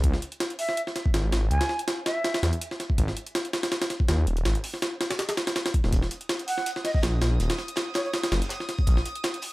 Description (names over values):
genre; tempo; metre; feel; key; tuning
drum and bass, jungle; 163 BPM; 4/4; swing 54% on 16ths; unclear; A4 = 442 Hz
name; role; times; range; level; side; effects
detuned saw bass; bass; 0.0-9.0 s; Eb1 to Fb2; -24 LUFS; equal; none
jungle sampler-style drum kit; drums; 0.0-9.5 s; hi-hat, kick drum, snare drum; -26 LUFS; equal; overdrive
mellow silver concert flute; melody; 0.6-2.4, 6.5-8.1 s; Db5 to Ab5; -31 LUFS; right 1 dB; dub echo
crunchy breakbeat drum kit; drums; 5.9-9.5 s; hi-hat, snare drum; -41 LUFS; equal; none
drifting glass-harmonics texture; texture; 6.4-9.5 s; Eb6; -39 LUFS; right 1 dB; chorus, built-in reverb
room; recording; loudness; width
small room ambience; none; -24 LUFS; side -20 dB against mid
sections
0.0-9.5 A section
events
none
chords
0.0 Dbm; 3.0 Ab5; 5.9 N.C.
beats
| 0.04 0.41 0.77 1.14 | 1.51 1.88 2.25 2.61 | 2.98 3.35 3.72 4.09 | 4.45 4.82 5.19 5.56 | 5.93 6.29 6.66 7.03 | 7.40 7.77 8.13 8.50 | 8.87 9.24